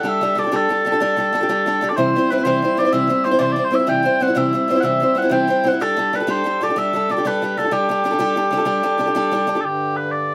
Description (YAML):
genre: celtic folk, Celtic slide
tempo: 125 BPM (dotted quarters)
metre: 12/8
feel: straight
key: unclear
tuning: A4 = 441 Hz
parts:
  - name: mellow small bagpipes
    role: melody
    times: 0.0-10.3 s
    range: G4 to G5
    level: -22 LUFS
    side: equal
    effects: none
  - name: picked acoustic archtop guitar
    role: accompaniment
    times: 0.0-9.6 s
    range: C3 to C5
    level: -21 LUFS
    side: equal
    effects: none
  - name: accordion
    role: drone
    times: 9.6-10.3 s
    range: G2 to D3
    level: -29 LUFS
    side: equal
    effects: light tremolo tuning
room: moderate small room ambience, RT60 0.5 s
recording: none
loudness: -18 LUFS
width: mono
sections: 0.0-9.6 A section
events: none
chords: 0.0 Gsus2; 2.0 C; 5.8 Gsus2; 9.6 G5